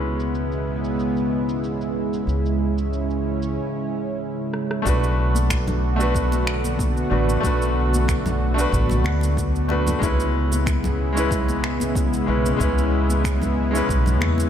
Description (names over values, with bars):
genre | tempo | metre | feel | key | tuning
sunset chillout | 93 BPM | 4/4 | swing 53% on 16ths | B dorian | A4 = 438 Hz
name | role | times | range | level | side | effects
clear concert grand piano | accompaniment | 0.0-14.5 s | G#3 to B4 | -25 LUFS | left 1 dB | auto-pan, tape echo
lush unison pad | sustained chords | 0.0-14.5 s | C#3 to F#4 | -24 LUFS | right 1 dB | chorus
upright bass | bass | 0.0-14.5 s | A1 to E2 | -23 LUFS | equal | none
electronic cabasa, rim click and finger snaps | drums | 0.2-14.5 s | none | -30 LUFS | right 2 dB | overdrive, low-pass filter on perc, studio reverb, low-pass filter on snare
electronic kick drum | drums | 4.9-14.0 s | none | -25 LUFS | equal | overdrive, studio reverb
congas | percussion | 5.3-14.5 s | none | -32 LUFS | left 2 dB | none
room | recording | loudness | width
moderate plate reverb, RT60 2.1 s | dreamy mix soaked in reverb | -19 LUFS | side -9 dB against mid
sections
0.0-4.9 A section; 4.9-14.5 B section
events
break 3.6-4.9; drum fill 4.5-4.9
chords
0.0 C#m7; 4.9 Bm7; 10.0 C#m7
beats
0.34 0.99 1.63 | 2.28 2.92 3.57 4.21 | 4.86 5.50 6.15 6.79 | 7.44 8.08 8.73 9.37 | 10.02 10.66 11.31 11.95 | 12.60 13.24 13.89